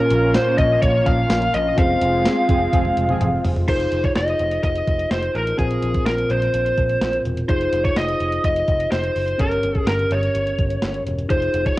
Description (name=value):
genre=1980s-style pop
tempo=126 BPM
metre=4/4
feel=straight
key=F minor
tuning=A4 = 440 Hz
part: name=lead guitar through a small cranked amp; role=melody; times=0.0-11.8 s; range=Ab4 to F5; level=-21 LUFS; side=equal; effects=overdrive, cassette tape
part: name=mellow tine electric piano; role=accompaniment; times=0.0-11.8 s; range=G2 to Db5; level=-24 LUFS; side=equal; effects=medium stereo tremolo, cassette tape
part: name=lush unison pad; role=sustained chords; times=0.0-3.7 s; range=Ab3 to F4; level=-26 LUFS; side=equal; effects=chorus, cassette tape
part: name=picked electric bass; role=bass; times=0.1-11.7 s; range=E1 to Bb1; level=-26 LUFS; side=equal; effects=none
part: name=clean 12-bit digital drum machine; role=drums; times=0.1-11.8 s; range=crash cymbal, hi-hat, kick drum, snare drum, tambourine, toms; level=-22 LUFS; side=equal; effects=cassette tape
part: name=analog synth brass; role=stabs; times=2.5-3.3 s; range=F3 to Ab4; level=-26 LUFS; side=right 2 dB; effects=chorus, cassette tape
room=moderate spring reverb, RT60 1.6 s, digital ambience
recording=home recording on cassette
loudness=-17 LUFS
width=side -17 dB against mid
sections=0.0-3.7 A section; 3.7-11.8 B section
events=band accent 1.8-3.7; drum fill 2.7-3.7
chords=0.0 Bbm; 1.8 Fm; 3.7 Fm7; 5.6 Bbsus2; 7.5 Fm7; 9.4 Gdim